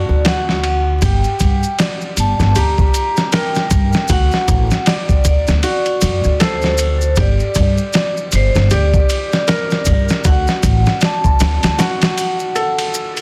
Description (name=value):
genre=trip hop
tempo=78 BPM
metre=4/4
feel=swing 59% on 16ths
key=G harmonic minor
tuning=A4 = 440 Hz
part: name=vibraphone with hard mallets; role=melody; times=0.0-12.9 s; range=C5 to Bb5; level=-23 LUFS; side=equal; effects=tape echo
part: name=felt-muted upright piano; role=arpeggios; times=0.0-13.2 s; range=F#4 to F#5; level=-26 LUFS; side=equal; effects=delay
part: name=upright bass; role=bass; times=0.0-11.8 s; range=G1 to G2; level=-18 LUFS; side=equal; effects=none
part: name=dusty soul sampler-style drum kit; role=drums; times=0.2-13.2 s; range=kick drum, ride cymbal, snare drum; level=-19 LUFS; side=equal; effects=none
part: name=maracas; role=percussion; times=1.0-13.2 s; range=none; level=-28 LUFS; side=equal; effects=none
room=little or no reverb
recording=dense, heavily limited modern master, vinyl crackle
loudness=-15 LUFS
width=mono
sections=0.0-13.2 A section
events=break 11.8-13.2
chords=0.0 D; 1.0 Gm; 4.1 D; 7.2 Gm; 10.2 D